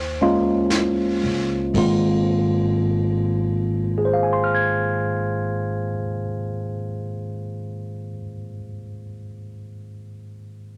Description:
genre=jazz ballad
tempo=36 BPM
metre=4/4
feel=swing 66% on 8ths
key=Ab major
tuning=A4 = 440 Hz
part: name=barky tine electric piano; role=accompaniment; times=0.0-10.8 s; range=Ab2 to Ab6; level=-24 LUFS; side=equal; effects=overdrive
part: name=upright bass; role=bass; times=0.0-5.9 s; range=Ab1 to Eb2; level=-34 LUFS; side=equal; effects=none
part: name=jazz brush drum kit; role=drums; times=0.7-2.0 s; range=brushed snare drum, hi-hat, kick drum, ride cymbal, snare drum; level=-33 LUFS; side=equal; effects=none
room=moderate studio reverb, RT60 0.5 s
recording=none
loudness=-22 LUFS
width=mono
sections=0.0-2.3 A section; 2.3-9.0 B section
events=slowing down 0.0-2.3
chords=0.0 Eb9sus4; 1.5 Ab69

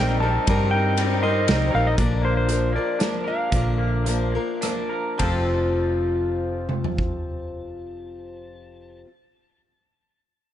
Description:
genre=folk rock and heartland rock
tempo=101-120 BPM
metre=3/4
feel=straight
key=F mixolydian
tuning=A4 = 440 Hz
part: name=clean lap steel guitar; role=melody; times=0.0-9.0 s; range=C5 to A5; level=-27 LUFS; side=equal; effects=tape echo
part: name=picked swing-style acoustic guitar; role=accompaniment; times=0.0-9.1 s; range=F2 to Bb4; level=-28 LUFS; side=left 4 dB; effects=none
part: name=pedal harmonium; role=sustained chords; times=0.0-2.0 s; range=C4 to Bb4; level=-36 LUFS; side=right 3 dB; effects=none
part: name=electric guitar through a small old amp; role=riff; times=0.0-9.1 s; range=Bb2 to Bb4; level=-28 LUFS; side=right 1 dB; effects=none
part: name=hollow-body short-scale fingered electric bass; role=bass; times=0.0-9.0 s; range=F1 to G2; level=-25 LUFS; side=equal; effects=none
part: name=loose indie drum kit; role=drums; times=0.5-7.1 s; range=hi-hat, kick drum, ride cymbal, rim click, snare drum, toms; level=-27 LUFS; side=equal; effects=none
room=little or no reverb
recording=nothing above 10.5 kHz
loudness=-20 LUFS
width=side -11 dB against mid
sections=0.0-2.0 A section; 2.0-5.2 B section; 5.2-8.8 C section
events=slowing down 2.0-5.2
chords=0.0 Eb6; 2.0 Bb; 5.2 F

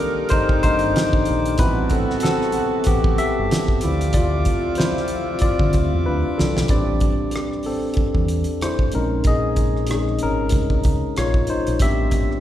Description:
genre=R&B, neo-soul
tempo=94 BPM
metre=4/4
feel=swing 56% on 16ths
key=unclear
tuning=A4 = 440 Hz
part: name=barky tine electric piano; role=accompaniment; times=0.0-12.4 s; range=Eb3 to E5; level=-22 LUFS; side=left 2 dB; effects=none
part: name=pipe organ, foundations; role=sustained chords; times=0.0-6.7 s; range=C4 to D6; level=-32 LUFS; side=equal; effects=none
part: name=warm horn section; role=stabs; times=0.0-6.3 s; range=C3 to Bb4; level=-29 LUFS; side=right 3 dB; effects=none
part: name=cloth-damped thuddy drum kit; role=drums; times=0.3-12.4 s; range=hi-hat, kick drum, rim click, snare drum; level=-21 LUFS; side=equal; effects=none
part: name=deep dub fingered electric bass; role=bass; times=0.7-12.3 s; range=G1 to D3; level=-24 LUFS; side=equal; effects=none
room=wet church reverb, RT60 3.3 s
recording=band playing live in one room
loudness=-17 LUFS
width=side -12 dB against mid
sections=0.0-6.7 A section; 6.7-12.4 B section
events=tine electric piano solo 0.0-6.7, 6.7-12.4; drum fill 6.1-6.7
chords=0.0 Cm9; 1.6 Am9; 3.8 Dm9; 6.7 Am11; 8.9 Bbm11; 11.8 Am11

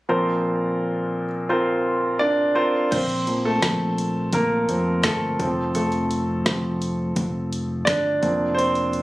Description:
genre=piano-driven pop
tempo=85 BPM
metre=4/4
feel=straight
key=Bb major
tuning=A4 = 440 Hz
part: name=clear baby grand piano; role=accompaniment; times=0.1-9.0 s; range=Bb2 to D5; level=-21 LUFS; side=equal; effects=none
part: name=fingered electric bass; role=bass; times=2.9-9.0 s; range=F1 to F2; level=-29 LUFS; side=equal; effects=none
part: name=deep house drum kit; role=drums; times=2.9-9.0 s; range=crash cymbal, hi-hat, kick drum, snare drum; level=-25 LUFS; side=equal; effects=none
room=light reverb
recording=recorded on a phone in the room, studio reverb, compression, faint mains hum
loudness=-20 LUFS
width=side -18 dB against mid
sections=0.1-2.9 A section; 2.9-9.0 B section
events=grand piano solo 2.9-9.0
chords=0.1 Bbsus2; 5.4 F; 8.2 Bbsus2/F

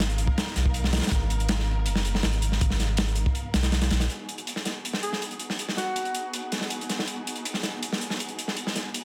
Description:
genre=drum and bass, jungle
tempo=161 BPM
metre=4/4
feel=straight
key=G# dorian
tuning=A4 = 445 Hz
part: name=dark studio string section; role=sustained chords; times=0.0-9.0 s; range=B3 to E#5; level=-40 LUFS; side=equal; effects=low-pass filter
part: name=soft dub sub bass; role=bass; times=0.0-4.1 s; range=F#1 to B1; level=-28 LUFS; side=equal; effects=tube saturation
part: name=crunchy breakbeat drum kit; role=drums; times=0.0-9.0 s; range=hi-hat, kick drum, snare drum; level=-30 LUFS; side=equal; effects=high-pass filter on kick, high-pass filter on hats, high-pass filter on snare, high-pass filter on room
part: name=breathy alto saxophone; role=melody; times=5.0-6.3 s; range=F#4 to G#4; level=-36 LUFS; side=equal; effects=dub echo
room=light reverb, small room ambience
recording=dense, heavily limited modern master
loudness=-27 LUFS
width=mono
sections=0.0-4.1 A section; 4.1-9.0 B section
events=drop 0.0-4.1; kick drops out 3.4-4.1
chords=0.0 G#m; 4.1 G#m7

